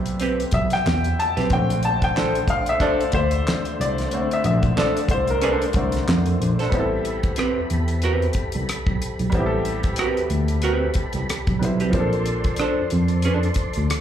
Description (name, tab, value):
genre	R&B, neo-soul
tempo	92 BPM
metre	4/4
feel	swing 58% on 16ths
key	A minor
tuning	A4 = 440 Hz
part	clear upright piano	accompaniment	0.0-14.0 s	C3 to A5	-25 LUFS	left 2 dB	slapback echo
part	tine electric piano	bass	0.0-14.0 s	A1 to F2	-23 LUFS	equal	overdrive, medium stereo tremolo
part	damped 70s drum kit	drums	0.1-14.0 s	handclaps, hi-hat, kick drum, rim click, snare drum	-25 LUFS	equal	none
part	archtop guitar, miked and amplified	second line	0.2-13.5 s	C4 to C5	-25 LUFS	right 3 dB	slapback echo
part	tonewheel organ	sustained chords	1.5-14.0 s	A3 to C6	-31 LUFS	left 2 dB	slow rotary speaker, chorus vibrato
room	light reverb, small room ambience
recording	live gig heard through the venue's PA, club reverb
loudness	-19 LUFS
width	side -10 dB against mid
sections	0.0-6.7 A section; 6.7-14.0 B section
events	upright piano solo 0.0-6.7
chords	0.0 Am9; 1.5 Bbmaj9; 6.7 Am9; 11.9 Bbmaj9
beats	0.20 0.85 | 1.50 2.15 2.81 3.46 | 4.11 4.76 5.42 6.07 | 6.72 7.37 8.02 8.68 | 9.33 9.98 10.63 11.29 | 11.94 12.59 13.24 13.89